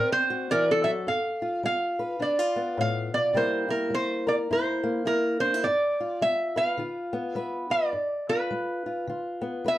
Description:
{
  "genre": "acoustic country blues, solo or duo",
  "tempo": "105 BPM",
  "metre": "4/4",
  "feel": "swing 60% on 8ths",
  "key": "G mixolydian",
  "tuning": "A4 = 440 Hz",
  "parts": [
    { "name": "lap resonator guitar", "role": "melody", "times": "0.0-9.8 s", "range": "A4 to F5", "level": "-25 LUFS", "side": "right 1 dB", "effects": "none" },
    { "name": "fingerpicked old ladder-braced acoustic guitar", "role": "accompaniment", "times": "0.0-9.8 s", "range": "G2 to B4", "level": "-29 LUFS", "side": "left 2 dB", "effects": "none" }
  ],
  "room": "wet studio reverb, RT60 0.5 s",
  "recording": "dark, warm production",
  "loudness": "-24 LUFS",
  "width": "side -14 dB against mid",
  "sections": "0.0-1.1 A section; 1.1-9.8 B section",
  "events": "resonator guitar played with a steel bar solo 0.0-1.1",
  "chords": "0.0 D7; 1.1 G7; 3.4 C7; 5.7 G7",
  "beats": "0.51 | 1.08 1.65 2.22 2.79 | 3.37 3.94 4.51 5.08 | 5.66 6.23 6.80 7.38 | 7.95 8.52 9.10 9.67"
}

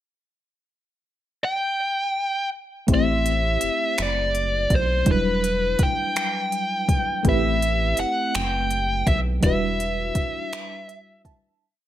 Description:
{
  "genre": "slow six-eight R&B",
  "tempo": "55 BPM (dotted quarters)",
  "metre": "6/8",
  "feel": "straight",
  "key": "E minor",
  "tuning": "A4 = 440 Hz",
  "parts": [
    { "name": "bluesy overdriven lead guitar", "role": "melody", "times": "1.4-11.2 s", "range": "B4 to G5", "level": "-24 LUFS", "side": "equal", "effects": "distortion" },
    { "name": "FM electric piano with auto-pan", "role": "accompaniment", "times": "2.9-11.6 s", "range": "F#3 to A5", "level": "-27 LUFS", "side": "left 1 dB", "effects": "phaser" },
    { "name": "rubbery square bass", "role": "bass", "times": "2.9-10.2 s", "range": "E1 to B1", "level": "-26 LUFS", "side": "equal", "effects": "none" },
    { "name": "smooth R&B drum kit", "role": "drums", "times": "2.9-11.4 s", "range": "finger snaps, hi-hat, kick drum", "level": "-24 LUFS", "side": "equal", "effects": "none" }
  ],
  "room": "light reverb",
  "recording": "none",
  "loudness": "-20 LUFS",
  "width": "side -12 dB against mid",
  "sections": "0.7-2.9 pickup bar; 2.9-11.6 verse",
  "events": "fade-out 9.4-11.6; FM electric piano fill 10.5-11.6",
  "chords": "0.7 N.C.; 2.9 Am9; 5.1 Em9; 7.2 Am9; 9.4 Em9",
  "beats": "| 0.70 1.79 | 2.88 3.98 | 5.07 6.16 | 7.25 8.34 | 9.43 10.52"
}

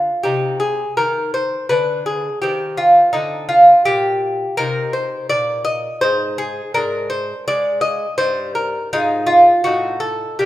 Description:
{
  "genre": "classical, baroque-style dance for lute",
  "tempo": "83 BPM",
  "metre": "3/4",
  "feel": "rubato",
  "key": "C minor, Eb major from 4.6 s",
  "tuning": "A4 = 440 Hz",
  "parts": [
    { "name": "lute", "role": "solo", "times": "0.0-10.5 s", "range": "G2 to Eb5", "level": "-14 LUFS", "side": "equal", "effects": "none" }
  ],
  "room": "wet recital hall reverb, RT60 1.6 s",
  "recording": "minimal, uncompressed stereo recording",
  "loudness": "-14 LUFS",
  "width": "side -14 dB against mid",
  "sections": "0.0-10.5 A section",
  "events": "none",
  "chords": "0.2 Cm; 1.7 N.C.; 2.4 Cm; 6.0 Ab; 6.7 Bb9/Ab; 8.2 Eb/G; 8.9 Fm7/Ab; 9.6 Ebdim/A",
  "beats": "| 0.25 0.98 1.71 | 2.43 3.15 3.87 | 4.60 5.31 6.03 | 6.75 7.47 8.19 | 8.91 9.65 10.39"
}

